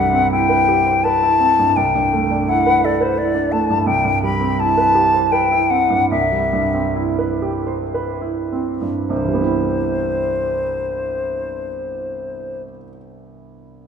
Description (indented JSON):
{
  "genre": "classical, impressionist duo for flute and grand piano",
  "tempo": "49-89 BPM",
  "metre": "3/4",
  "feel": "rubato",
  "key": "C lydian",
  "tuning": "A4 = 438 Hz",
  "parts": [
    { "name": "bright silver concert flute", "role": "melody", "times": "0.0-12.6 s", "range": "C5 to B5", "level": "-17 LUFS", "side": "left 4 dB", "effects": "none" },
    { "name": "clear concert grand piano", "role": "accompaniment", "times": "0.0-13.9 s", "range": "C2 to C5", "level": "-20 LUFS", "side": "right 4 dB", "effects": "none" }
  ],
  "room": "moderate concert hall reverb, RT60 2.2 s",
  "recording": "minimal, uncompressed stereo recording",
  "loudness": "-15 LUFS",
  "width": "side -7 dB against mid",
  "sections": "0.0-9.1 A section; 9.1-13.9 B section",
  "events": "slowing down 2.8-9.1",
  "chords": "0.0 Cmaj7; 1.8 Am11/C; 3.9 Cmaj7"
}